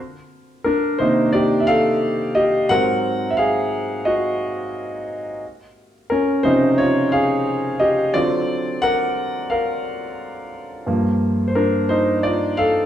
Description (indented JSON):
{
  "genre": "soul",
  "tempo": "88 BPM",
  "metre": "4/4",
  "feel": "swing 58% on 16ths",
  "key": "unclear",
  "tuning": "A4 = 438 Hz",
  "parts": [
    { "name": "clear concert grand piano", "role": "solo", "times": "0.6-12.9 s", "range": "G2 to Gb5", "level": "-17 LUFS", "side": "equal", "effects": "none" }
  ],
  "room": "wet large studio reverb, RT60 0.9 s",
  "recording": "band playing live in one room",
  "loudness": "-17 LUFS",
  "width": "side -10 dB against mid",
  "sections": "0.0-12.9 A section",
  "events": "grand piano solo 0.0-12.9",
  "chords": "0.0 Cm9; 2.7 Ab13; 5.4 Dbmaj9; 8.1 D7alt; 10.9 Gm9"
}